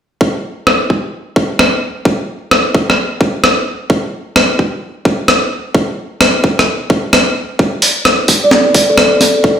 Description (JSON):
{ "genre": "UK garage, two-step garage", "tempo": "130 BPM", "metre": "4/4", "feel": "swing 66% on 16ths", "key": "unclear", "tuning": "A4 = 440 Hz", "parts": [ { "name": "electronic kick drum", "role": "drums", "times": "0.2-9.6 s", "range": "none", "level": "-11 LUFS", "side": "equal", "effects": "high-pass filter on kick" }, { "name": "breakbeat sampler-style drum kit", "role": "drums", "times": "0.7-9.3 s", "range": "hi-hat, rim click, snare drum", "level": "-10 LUFS", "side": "equal", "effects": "low-pass filter on snare, low-pass filter on hats, low-pass filter on room" }, { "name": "kalimba", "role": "melody", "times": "8.4-9.0 s", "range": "A4 to D5", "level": "-10 LUFS", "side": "equal", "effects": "ping-pong delay" } ], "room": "wet studio reverb, RT60 0.6 s", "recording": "played on a big sound system in a bare room, stone room reverb", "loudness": "-10 LUFS", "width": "side -8 dB against mid", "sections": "0.2-9.6 A section", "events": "none", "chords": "none" }